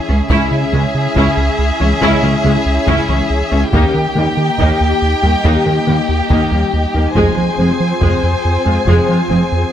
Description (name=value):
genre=cinematic, hybrid orchestral and electronic film score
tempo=70 BPM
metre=4/4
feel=straight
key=unclear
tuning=A4 = 440 Hz
part: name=rich studio violin section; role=second line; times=0.0-9.7 s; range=G4 to Ab5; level=-19 LUFS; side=left 2 dB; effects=none
part: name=hollow soft pad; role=sustained chords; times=0.0-9.7 s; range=Bb3 to Eb5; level=-21 LUFS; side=left 1 dB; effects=ensemble chorus
part: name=clear symphonic viola section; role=accompaniment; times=0.1-9.4 s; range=G3 to Ab4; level=-20 LUFS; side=equal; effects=none
part: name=thumb-piano-like synth pluck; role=arpeggios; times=0.1-9.4 s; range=Db3 to Eb4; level=-23 LUFS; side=left 4 dB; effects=chorus, digital delay
part: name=rubbery square bass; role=riff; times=0.1-9.7 s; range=Db2 to F3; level=-16 LUFS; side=right 1 dB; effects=none
part: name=rich symphonic cello section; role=bass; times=0.1-9.4 s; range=Db2 to F2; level=-21 LUFS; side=right 1 dB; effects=none
part: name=mellow French horn section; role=sustained chords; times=0.3-9.2 s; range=Ab3 to Ab4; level=-23 LUFS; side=left 2 dB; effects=none
part: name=rich symphonic double bass section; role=bass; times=0.3-9.4 s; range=F1 to Eb2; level=-22 LUFS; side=right 2 dB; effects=none
part: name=taiko ensemble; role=drums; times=0.3-8.8 s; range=none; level=-22 LUFS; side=equal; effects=none
room=light reverb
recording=close, detailed microphones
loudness=-11 LUFS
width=side -10 dB against mid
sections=0.0-9.7 A section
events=none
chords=0.0 Dbm; 3.7 Eb; 7.2 Fm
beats=| 0.31 1.16 2.02 2.88 | 3.73 4.59 5.45 6.31 | 7.16 8.02 8.88